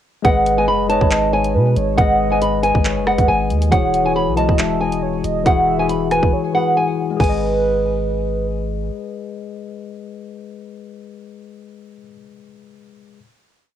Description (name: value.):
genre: hip hop, drill.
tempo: 138 BPM.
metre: 4/4.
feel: half-time.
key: G# minor.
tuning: A4 = 438 Hz.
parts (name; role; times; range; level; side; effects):
nylon-string guitar; melody; 0.2-8.5 s; F#5 to B5; -19 LUFS; right 1 dB; low-pass filter, cassette tape, tape echo.
warm velvety synth lead; second line; 0.2-8.5 s; B4 to E5; -23 LUFS; right 9 dB; chorus, cassette tape, tape echo.
mellow tine electric piano; accompaniment; 0.2-13.2 s; E3 to D#5; -22 LUFS; left 9 dB; low-pass filter, cassette tape.
long sustained 808-style bass; bass; 0.2-8.9 s; E1 to B2; -23 LUFS; right 1 dB; none.
drill drum kit; drums; 0.2-7.3 s; crash cymbal, handclaps, hi-hat, kick drum, rim click; -19 LUFS; right 1 dB; cassette tape.
room: light reverb.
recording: home recording on cassette.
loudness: -15 LUFS.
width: side -10 dB against mid.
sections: 0.2-7.2 hook; 7.2-10.7 final chord.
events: break 6.3-7.2.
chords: 0.2 G#m; 3.7 Eadd9; 7.2 G#m.